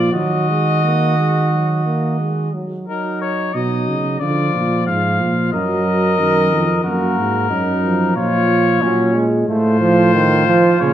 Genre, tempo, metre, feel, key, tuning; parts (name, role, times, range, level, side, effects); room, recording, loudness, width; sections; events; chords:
classical, imitative canzona for brass ensemble; 91 BPM; 4/4; straight; Eb minor; A4 = 440 Hz
warm trumpet; melody; 0.0-10.9 s; Bb4 to F5; -20 LUFS; left 6 dB
warm flugelhorn; second line; 0.0-10.9 s; Db4 to Bb4; -22 LUFS; right 4 dB
mellow trombone; accompaniment; 0.0-10.9 s; Db3 to Bb3; -20 LUFS; right 1 dB
mellow tuba; bass; 0.0-10.9 s; F2 to Eb3; -18 LUFS; right 1 dB
wet recital hall reverb, RT60 1.4 s; -14 LUFS; side -11 dB against mid
0.0-2.9 A section; 2.9-10.9 B section
0.1 Ebm; 2.9 Ebm/Gb; 4.2 Bb; 5.5 Ebm/Gb; 8.2 Bbm; 9.5 F/A